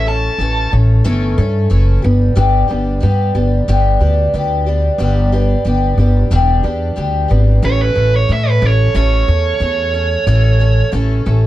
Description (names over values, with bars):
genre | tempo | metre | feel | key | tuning
folk rock and heartland rock | 91 BPM | 4/4 | straight | A mixolydian | A4 = 440 Hz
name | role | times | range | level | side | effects
bluesy overdriven lead guitar | melody | 0.0-0.7, 7.7-10.9 s | B4 to A5 | -17 LUFS | right 4 dB | distortion
picked twelve-string acoustic guitar | accompaniment | 0.0-11.5 s | G2 to A4 | -19 LUFS | left 2 dB | none
upright bass | bass | 0.0-11.5 s | E1 to A2 | -13 LUFS | equal | none
room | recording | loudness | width
little or no reverb | dark, warm production | -11 LUFS | side -14 dB against mid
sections
0.0-7.6 A section; 7.6-11.5 B section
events
lead electric guitar solo 7.6-11.5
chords
0.0 A; 2.0 G; 7.6 A